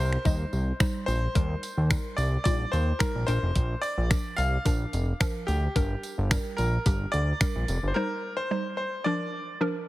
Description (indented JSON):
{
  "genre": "dance-pop",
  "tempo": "109 BPM",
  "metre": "4/4",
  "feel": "straight",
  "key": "unclear",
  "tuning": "A4 = 440 Hz",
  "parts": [
    { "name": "bright grand piano", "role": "melody", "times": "0.0-9.6 s", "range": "G4 to F5", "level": "-32 LUFS", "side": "equal", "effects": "dub echo" },
    { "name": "hollow square pluck", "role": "accompaniment", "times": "0.0-9.9 s", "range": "F3 to Eb5", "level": "-33 LUFS", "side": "equal", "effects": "chorus, sidechain pumping" },
    { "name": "fat analog bass", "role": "bass", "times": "0.0-7.9 s", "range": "F1 to Eb2", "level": "-27 LUFS", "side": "equal", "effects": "sidechain pumping" },
    { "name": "clean 12-bit digital drum machine", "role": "drums", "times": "0.1-7.8 s", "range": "finger snaps, hi-hat, kick drum", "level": "-26 LUFS", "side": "equal", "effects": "none" },
    { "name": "tambourine", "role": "percussion", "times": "0.3-7.8 s", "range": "none", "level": "-46 LUFS", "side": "right 6 dB", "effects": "none" }
  ],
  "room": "light reverb",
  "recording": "heavily compressed radio sound",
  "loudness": "-25 LUFS",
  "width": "side -17 dB against mid",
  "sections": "0.0-9.9 A section",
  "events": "break 8.0-9.9",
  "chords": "0.0 Cm; 1.4 Eb; 3.3 Bb; 5.8 Gm; 8.0 Cm; 9.1 Bb",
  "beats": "0.25 0.81 | 1.35 1.91 2.46 3.01 | 3.56 4.11 4.66 5.21 | 5.76 6.31 6.86 7.41 | 7.96 8.51 9.06 9.61"
}